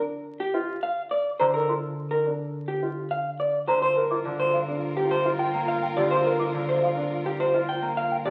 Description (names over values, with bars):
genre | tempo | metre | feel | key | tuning
classical, minimalist pattern music | 105 BPM | 4/4 | straight | G minor from 3.8 s | A4 = 437 Hz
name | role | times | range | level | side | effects
warm baby grand piano | arpeggios | 0.0-8.3 s | D4 to Bb4 | -33 LUFS | equal | none
electric guitar through a small old amp | melody | 0.4-8.3 s | G4 to G5 | -28 LUFS | equal | none
concert harp | accompaniment | 1.4-8.3 s | D3 to Bb3 | -35 LUFS | equal | none
mellow hollow concert flute | arpeggios | 1.4-8.2 s | F5 to D6 | -32 LUFS | equal | none
dark clarinet | second line | 3.8-8.2 s | F4 | -36 LUFS | equal | none
rich studio string section | sustained chords | 3.8-8.2 s | F4 to Bb4 | -38 LUFS | equal | none
warm double bass | bass | 3.8-8.2 s | G2 | -51 LUFS | equal | none
room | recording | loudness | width
wet large studio reverb, RT60 1.2 s | very old 78 rpm record, vinyl crackle | -26 LUFS | mono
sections
0.0-3.8 A section; 3.8-8.3 B section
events
none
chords
0.0 G7(no3) (rootless); 3.8 Gm7